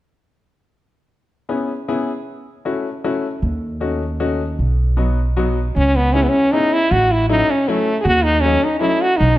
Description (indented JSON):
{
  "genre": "musette waltz",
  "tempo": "156 BPM",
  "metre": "3/4",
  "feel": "swing 54% on 8ths",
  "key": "C# minor",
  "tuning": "A4 = 438 Hz",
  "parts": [
    { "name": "bright upright piano", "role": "accompaniment", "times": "1.5-9.0 s", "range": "F#3 to G#4", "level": "-22 LUFS", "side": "left 3 dB", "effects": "none" },
    { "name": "upright bass", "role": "bass", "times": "3.4-9.4 s", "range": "A1 to D#2", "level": "-18 LUFS", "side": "right 1 dB", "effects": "none" },
    { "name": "stopped French horn", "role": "melody", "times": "5.8-9.4 s", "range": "A3 to G#4", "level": "-15 LUFS", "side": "equal", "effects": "none" }
  ],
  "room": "moderate recital hall reverb, RT60 1.7 s",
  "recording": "dark, warm production",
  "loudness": "-15 LUFS",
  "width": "side -15 dB against mid",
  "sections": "1.1-5.7 A section; 5.7-9.4 B section",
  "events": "none",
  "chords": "1.1 C#m7; 2.3 A6; 3.4 D#m7b5; 4.6 B; 5.7 C#m7; 6.9 A6; 8.1 D#m7b5",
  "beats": "| 1.10 1.49 1.88 | 2.27 2.65 3.04 | 3.42 3.81 4.20 | 4.58 4.97 5.36 | 5.75 6.13 6.52 | 6.91 7.29 7.67 | 8.05 8.44 8.82 | 9.20"
}